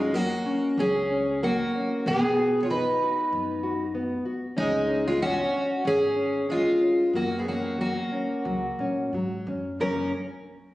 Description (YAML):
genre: fado-style ballad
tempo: 93 BPM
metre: 4/4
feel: rubato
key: F# major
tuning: A4 = 442 Hz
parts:
  - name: fingerpicked twelve-string acoustic guitar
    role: melody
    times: 0.0-10.1 s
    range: D#4 to C#5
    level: -26 LUFS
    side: equal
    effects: none
  - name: fingerpicked twelve-string acoustic guitar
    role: second line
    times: 0.0-10.1 s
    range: G#3 to E#4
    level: -29 LUFS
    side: equal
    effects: none
  - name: nylon-string guitar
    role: accompaniment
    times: 0.0-10.1 s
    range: F#2 to F#4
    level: -30 LUFS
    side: left 1 dB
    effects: none
  - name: upright bass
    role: bass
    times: 0.0-10.1 s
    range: F#1 to A#2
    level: -39 LUFS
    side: equal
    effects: none
room: moderate recital hall reverb, RT60 1.4 s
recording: recorded on a phone in the room, studio reverb, compression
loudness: -23 LUFS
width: side -16 dB against mid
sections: 0.0-9.8 A section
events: none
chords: 0.0 F#5; 2.1 B; 4.6 C#; 7.1 F#